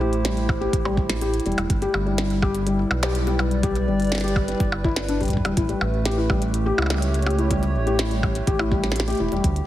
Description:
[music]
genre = IDM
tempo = 124 BPM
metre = 4/4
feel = straight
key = unclear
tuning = A4 = 439 Hz
[part]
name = hollow soft pad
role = sustained chords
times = 0.0-9.7 s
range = D3 to D5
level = -27 LUFS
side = equal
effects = chorus, sidechain pumping
[part]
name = felt-muted upright piano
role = arpeggios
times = 0.0-9.4 s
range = G3 to G4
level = -26 LUFS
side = left 3 dB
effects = ping-pong delay
[part]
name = round analog bass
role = bass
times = 0.0-9.6 s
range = D1 to G2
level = -25 LUFS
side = equal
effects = none
[part]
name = glitchy drum kit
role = drums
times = 0.1-9.7 s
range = hi-hat, percussion blips, snare drum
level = -28 LUFS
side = equal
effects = ping-pong delay
[part]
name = electronic kick drum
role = drums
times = 0.5-9.5 s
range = none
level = -24 LUFS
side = equal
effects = none
[sound]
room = light reverb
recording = heavily compressed radio sound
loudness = -20 LUFS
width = side -14 dB against mid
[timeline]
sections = 0.0-9.7 A section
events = none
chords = 0.0 Am7; 1.7 Em7/G; 5.6 A7

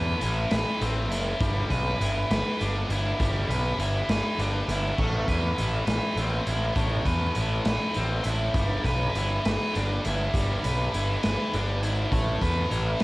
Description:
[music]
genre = indie rock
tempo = 67 BPM (dotted quarters)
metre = 6/8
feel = straight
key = A minor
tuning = A4 = 443 Hz
[part]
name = high-gain distorted guitar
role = riff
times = 0.0-13.0 s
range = G3 to B4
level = -28 LUFS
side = equal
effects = distortion, cassette tape
[part]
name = fuzz picked electric bass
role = bass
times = 0.0-13.0 s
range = F#1 to E2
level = -27 LUFS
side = equal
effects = overdrive
[part]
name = raw garage drum kit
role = drums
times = 0.2-13.0 s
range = crash cymbal, hi-hat, kick drum, snare drum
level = -30 LUFS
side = equal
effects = cassette tape
[sound]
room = little or no reverb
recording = home recording on cassette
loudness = -24 LUFS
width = side -20 dB against mid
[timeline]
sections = 0.0-5.0 A section; 5.0-13.0 A section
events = none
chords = 0.0 Amadd9; 1.4 Em7/G; 5.0 Amadd9; 8.6 Em7/G; 12.1 Asus2

